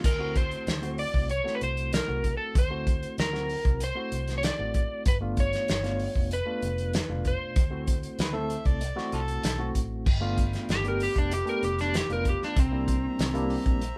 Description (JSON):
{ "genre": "straight-eighth soul blues", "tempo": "96 BPM", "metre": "4/4", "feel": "straight", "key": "G mixolydian", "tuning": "A4 = 440 Hz", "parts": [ { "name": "electric slide guitar", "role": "melody", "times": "0.0-13.8 s", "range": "C4 to D5", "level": "-33 LUFS", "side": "equal", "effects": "none" }, { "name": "barky reed electric piano", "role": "accompaniment", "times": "0.0-13.8 s", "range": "B2 to A4", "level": "-37 LUFS", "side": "equal", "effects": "overdrive, tremolo" }, { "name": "vintage muted fingered electric bass", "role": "bass", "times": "0.0-13.9 s", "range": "F1 to D2", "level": "-35 LUFS", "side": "equal", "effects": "none" }, { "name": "warm soul drum kit", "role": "drums", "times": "0.0-14.0 s", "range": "crash cymbal, hi-hat, kick drum, snare drum", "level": "-30 LUFS", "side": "equal", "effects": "none" }, { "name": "overdriven harmonica", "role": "second line", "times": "8.2-9.7 s", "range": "D4 to E5", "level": "-38 LUFS", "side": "equal", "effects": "none" }, { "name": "brilliant horn section", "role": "sustained chords", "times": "10.1-14.0 s", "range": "B4 to Bb5", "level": "-44 LUFS", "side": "equal", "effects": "none" } ], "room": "moderate studio reverb, RT60 0.5 s", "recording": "band playing live in one room", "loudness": "-28 LUFS", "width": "mono", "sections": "0.0-10.1 A section; 10.1-14.0 B section", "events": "electric slide guitar solo 10.1-14.0", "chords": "0.0 D7; 5.1 G7; 7.6 D7; 10.1 G7; 12.6 C7" }